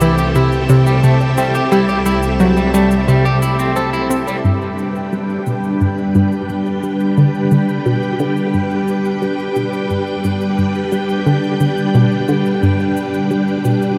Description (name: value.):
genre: ambient, sequencer-driven space music.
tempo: 88 BPM.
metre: 4/4.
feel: straight.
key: unclear.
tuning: A4 = 440 Hz.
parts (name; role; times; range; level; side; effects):
string machine, full ensemble; sustained chords; 0.0-14.0 s; G3 to G5; -20 LUFS; equal; ensemble chorus, shimmer reverb.
electric guitar at the edge of break-up; arpeggios; 0.0-4.4 s; G3 to A4; -24 LUFS; equal; tape echo, shimmer reverb.
analog pluck; riff; 0.0-13.9 s; G2 to C4; -18 LUFS; equal; chorus, tape echo.
fat analog bass; bass; 0.0-4.4 s; C2; -25 LUFS; equal; none.
cabasa and woodblock; percussion; 0.0-14.0 s; none; -37 LUFS; equal; tape echo.
wind-like tuned noise texture; texture; 0.0-4.5 s; E4 to E5; -37 LUFS; equal; none.
room: wet cathedral reverb, RT60 6.6 s.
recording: in a vast, echoing space.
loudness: -16 LUFS.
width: mono.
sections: 0.0-4.4 A section; 4.4-14.0 B section.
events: filter sweep on synth arpeggio sound 4.4-14.0.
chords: 0.0 C6; 4.4 G.